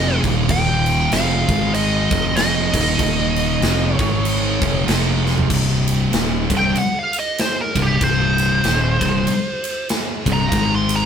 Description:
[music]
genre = stoner and doom metal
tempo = 96 BPM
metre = 4/4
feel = swing 59% on 8ths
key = C minor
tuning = A4 = 440 Hz
[part]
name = fuzz lead guitar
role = melody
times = 0.0-11.1 s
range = G4 to C6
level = -21 LUFS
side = right 1 dB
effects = wah, distortion
[part]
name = thick fuzz guitar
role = riff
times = 0.0-11.1 s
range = C2 to Ab3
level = -22 LUFS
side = left 7 dB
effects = distortion
[part]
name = thick fuzz guitar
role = riff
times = 0.0-11.1 s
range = C2 to Ab3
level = -22 LUFS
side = right 6 dB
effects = distortion
[part]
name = fuzz fingered electric bass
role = bass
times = 0.0-11.1 s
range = C1 to Ab1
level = -24 LUFS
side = equal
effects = overdrive
[part]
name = big rock drum kit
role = drums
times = 0.2-11.0 s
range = crash cymbal, kick drum, ride cymbal, snare drum, toms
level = -21 LUFS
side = right 1 dB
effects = none
[sound]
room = light reverb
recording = band playing live in one room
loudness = -16 LUFS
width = side -8 dB against mid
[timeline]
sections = 0.0-5.5 A section; 5.5-11.1 B section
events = drum fill 5.2-5.5; lead electric guitar solo 5.5-11.1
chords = 0.2 Eb5; 1.4 Ab5; 2.1 F5; 2.7 Eb5; 3.9 Ab5; 4.6 F5; 5.5 Cm; 10.5 Ab5

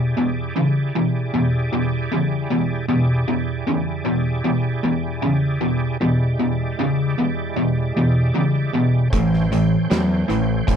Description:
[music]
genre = blues rock power trio and southern rock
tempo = 77 BPM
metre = 4/4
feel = straight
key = unclear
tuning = A4 = 440 Hz
[part]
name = overdriven tonewheel organ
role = sustained chords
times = 0.0-10.8 s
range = G#3 to G5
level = -29 LUFS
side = right 4 dB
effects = slow rotary speaker, chorus vibrato
[part]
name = distorted electric guitar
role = riff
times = 0.0-10.8 s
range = E2 to F#3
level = -18 LUFS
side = equal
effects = distortion
[part]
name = growling fingered electric bass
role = bass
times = 9.1-10.8 s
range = A1 to E2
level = -23 LUFS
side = equal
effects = overdrive
[part]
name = oversized low-tuned drum kit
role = drums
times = 9.1-10.8 s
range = hi-hat, kick drum, snare drum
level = -24 LUFS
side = equal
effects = none
[sound]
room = little or no reverb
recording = dry, close 1970s-style studio recording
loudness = -18 LUFS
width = side -8 dB against mid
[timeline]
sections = 0.0-10.8 A section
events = none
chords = 0.0 E7#9; 9.1 A7#9

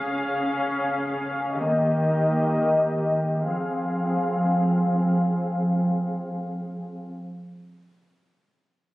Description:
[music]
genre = hip hop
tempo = free time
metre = none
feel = none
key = F minor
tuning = A4 = 444 Hz
[part]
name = dark studio string section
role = sustained chords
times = 0.0-7.1 s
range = Db3 to F5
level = -22 LUFS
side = equal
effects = low-pass filter
[sound]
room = light reverb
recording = recorded on a phone in the room, studio reverb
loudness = -22 LUFS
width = side -18 dB against mid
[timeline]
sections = 0.0-3.5 A section; 3.5-7.2 B section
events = filter sweep on string section 0.0-3.5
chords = 0.0 Db; 1.6 Eb; 3.5 Fm

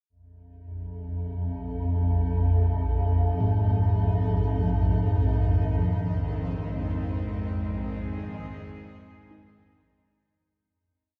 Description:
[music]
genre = dark ambient drone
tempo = 46 BPM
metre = 4/4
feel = straight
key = unclear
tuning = A4 = 441 Hz
[part]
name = swarming drone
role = drone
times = 0.7-10.7 s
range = Bb1 to F2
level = -28 LUFS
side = equal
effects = built-in reverb
[part]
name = metallic inharmonic drone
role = texture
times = 1.3-10.6 s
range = Eb4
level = -46 LUFS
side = equal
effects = chorus, built-in reverb
[part]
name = gamelan-type bossed gongs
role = arpeggios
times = 3.4-11.2 s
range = Ab2 to Eb4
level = -31 LUFS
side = equal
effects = diffuse ambient delay
[part]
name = warm chamber cello section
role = sustained chords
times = 5.3-10.6 s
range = Eb3 to Ab4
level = -39 LUFS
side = equal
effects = none
[sound]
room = wet huge ambient reverb, RT60 8.6 s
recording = dark, warm production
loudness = -26 LUFS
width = mono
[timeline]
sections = 0.1-10.5 A section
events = fade-in on synth drone 0.1-10.5; fade-out 5.3-10.5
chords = 0.1 Bb5; 5.3 Ab

